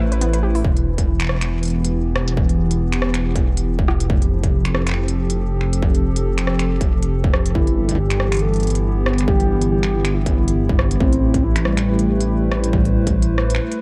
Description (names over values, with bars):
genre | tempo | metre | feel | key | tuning
IDM | 139 BPM | 4/4 | swing 56% on 16ths | E phrygian | A4 = 444 Hz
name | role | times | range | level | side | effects
warbly nostalgic lead | melody | 0.0-0.2, 7.6-13.8 s | G3 to A4 | -26 LUFS | equal | chorus, delay
hollow soft pad | sustained chords | 0.0-13.8 s | E3 to C5 | -26 LUFS | equal | chorus, sidechain pumping
warbly dusty pluck | arpeggios | 0.0-0.6 s | B3 to B4 | -32 LUFS | equal | chorus, delay
dark detuned saw bass | bass | 0.0-13.6 s | E1 to A1 | -22 LUFS | equal | none
industrial drum kit | drums | 0.1-13.8 s | finger snaps, hi-hat, rim click | -29 LUFS | equal | delay
electronic kick drum | drums | 0.6-13.1 s | none | -22 LUFS | equal | distortion
room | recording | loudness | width
light reverb | dark, warm production | -18 LUFS | mono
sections
0.6-13.8 A section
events
break 0.0-0.6, 13.6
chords
0.0 Am7; 0.6 Em; 4.1 Fmaj9; 7.6 Em/G; 11.0 Am7